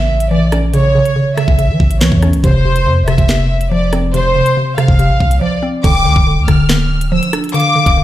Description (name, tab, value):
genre	hip hop, drill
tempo	141 BPM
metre	4/4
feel	half-time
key	D minor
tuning	A4 = 440 Hz
part	warm studio violin section	melody	0.0-8.0 s	C5 to F6	-17 LUFS	equal	tape echo
part	mallet-like synth pluck	accompaniment	0.0-8.0 s	C3 to D4	-15 LUFS	equal	chorus, phaser
part	long sustained 808-style bass	bass	0.0-8.0 s	D1 to E3	-15 LUFS	equal	none
part	drill drum kit	drums	0.2-8.0 s	crash cymbal, handclaps, hi-hat, kick drum, rim click, snare drum	-15 LUFS	equal	none
part	hollow clarinet-like synth lead	second line	5.8-8.0 s	F5 to G5	-21 LUFS	left 5 dB	chorus, tape echo
room	little or no reverb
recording	played on a big sound system in a bare room, large studio reverb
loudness	-10 LUFS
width	side -13 dB against mid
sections	0.0-5.8 A section; 5.8-8.0 B section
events	break 5.4-5.8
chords	0.0 A; 2.4 F5; 5.8 Dm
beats	0.31 | 0.74 1.16 1.59 2.01 | 2.44 2.86 3.29 3.71 | 4.14 4.57 4.99 5.42 | 5.84 6.27 6.69 7.12 | 7.54 7.97